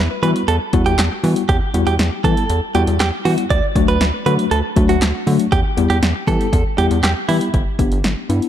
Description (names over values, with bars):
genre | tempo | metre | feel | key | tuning
synth-pop | 119 BPM | 4/4 | straight | E minor | A4 = 440 Hz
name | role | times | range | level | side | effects
rubbery square bass | bass | 0.0-8.4 s | G1 to E3 | -18 LUFS | equal | none
direct-recorded clean electric guitar | second line | 0.2-7.4 s | E4 to D5 | -21 LUFS | right 5 dB | ping-pong delay
tine electric piano | accompaniment | 0.2-8.5 s | F#3 to A4 | -20 LUFS | left 4 dB | medium stereo tremolo
punchy analog drum machine | drums | 0.2-8.5 s | handclaps, hi-hat, kick drum, snare drum | -20 LUFS | equal | overdrive
room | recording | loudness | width
light reverb, digital ambience | dark, warm production | -14 LUFS | side -10 dB against mid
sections
0.0-7.5 A section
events
none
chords
0.0 Emadd9; 3.5 D; 5.5 Em; 7.5 G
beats
0.48 0.98 | 1.49 1.99 2.50 3.00 | 3.50 4.01 4.51 5.02 | 5.52 6.03 6.53 7.03 | 7.54 8.04